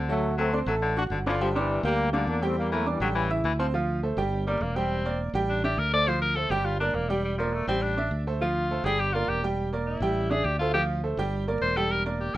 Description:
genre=latin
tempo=206 BPM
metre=4/4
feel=straight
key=D minor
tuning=A4 = 440 Hz
part: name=raspy baritone saxophone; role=second line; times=0.0-3.7 s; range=C3 to F#3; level=-31 LUFS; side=left 4 dB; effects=none
part: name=bright grand piano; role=accompaniment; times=0.0-12.4 s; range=F3 to G6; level=-28 LUFS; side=right 2 dB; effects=none
part: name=fretless electric bass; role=bass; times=0.0-12.4 s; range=E1 to E2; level=-30 LUFS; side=equal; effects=none
part: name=bright trombone section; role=melody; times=0.1-3.4 s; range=C#3 to F#4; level=-28 LUFS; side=left 2 dB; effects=none
part: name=bright tenor saxophone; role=melody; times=4.5-12.4 s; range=F3 to D5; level=-28 LUFS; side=left 2 dB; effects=none
room=light reverb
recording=rough home demo mix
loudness=-24 LUFS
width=side -15 dB against mid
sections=0.0-3.7 A section; 3.7-12.4 B section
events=tenor saxophone solo 3.7-12.4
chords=0.2 D7; 1.4 Gm; 2.6 Em7b5; 3.2 A7; 3.7 Dm7; 4.3 Gm; 4.9 Em7b5; 5.5 A7sus4; 6.1 Dm7; 6.7 Gm; 7.2 Em7b5; 7.8 A7sus4; 8.4 Dm7; 9.0 Gm; 9.6 Em7b5; 10.2 A7sus4; 10.7 Dm7; 11.3 Gm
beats=| 0.23 0.53 0.82 1.11 | 1.40 1.69 1.99 2.28 | 2.57 2.86 3.15 3.44 | 3.74 4.03 4.32 4.61 | 4.90 5.20 5.49 5.78 | 6.07 6.36 6.66 6.95 | 7.24 7.53 7.82 8.12 | 8.41 8.70 8.99 9.28 | 9.57 9.87 10.16 10.45 | 10.74 11.03 11.33 11.62 | 11.91 12.20

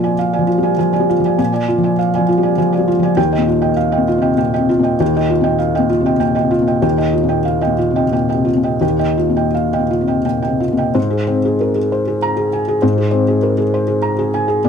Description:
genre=neoclassical minimalist piano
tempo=82-102 BPM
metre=3/4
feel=rubato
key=Ab major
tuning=A4 = 443 Hz
part: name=felt-muted upright piano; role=solo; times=0.0-14.7 s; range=Eb2 to Bb5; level=-13 LUFS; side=equal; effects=none
room=moderate studio reverb, RT60 0.7 s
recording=none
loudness=-13 LUFS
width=side -7 dB against mid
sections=0.0-11.0 A section; 11.0-14.7 B section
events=none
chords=0.0 Bb7; 3.2 Ebadd9; 11.0 Abadd9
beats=0.19 0.79 | 1.39 1.99 2.58 | 3.18 3.78 4.39 | 5.01 5.61 6.22 | 6.84 7.47 8.14 | 8.82 9.55 10.27 | 10.97 11.61 12.22 | 12.82 13.44 14.05 | 14.66

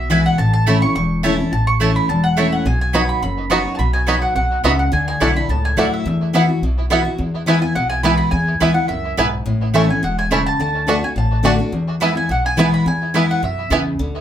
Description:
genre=bluegrass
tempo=212 BPM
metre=4/4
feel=straight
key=E mixolydian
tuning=A4 = 440 Hz
part: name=mandolin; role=melody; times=0.0-13.7 s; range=E5 to C#6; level=-21 LUFS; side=right 1 dB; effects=none
part: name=picked steel-string acoustic guitar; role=accompaniment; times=0.0-14.2 s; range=E2 to F#4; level=-19 LUFS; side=left 2 dB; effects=none
part: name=upright bass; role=bass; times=0.0-14.2 s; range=E1 to F#2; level=-21 LUFS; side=equal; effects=none
part: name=mandolin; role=stabs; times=0.1-13.8 s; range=A3 to B5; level=-22 LUFS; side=right 3 dB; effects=none
part: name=bluegrass banjo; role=arpeggios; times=2.9-13.8 s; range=A3 to F#4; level=-22 LUFS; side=right 3 dB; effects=tape echo
room=wet small room ambience, RT60 0.5 s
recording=heard from further back in the room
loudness=-15 LUFS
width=side -10 dB against mid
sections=0.0-7.2 A section; 7.2-14.2 B section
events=none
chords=0.4 A; 2.7 B; 4.9 Dadd9; 6.1 Esus2; 7.2 E; 9.5 A; 10.6 D; 11.7 E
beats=0.11 | 0.39 0.67 0.96 1.24 | 1.52 1.81 2.09 2.37 | 2.66 2.94 3.22 3.51 | 3.79 4.07 4.36 4.64 | 4.92 5.21 5.49 5.78 | 6.06 6.34 6.62 6.91 | 7.19 7.48 7.76 8.04 | 8.33 8.61 8.89 9.18 | 9.46 9.74 10.03 10.31 | 10.60 10.88 11.16 11.45 | 11.73 12.01 12.30 12.58 | 12.87 13.15 13.43 13.72 | 14.00

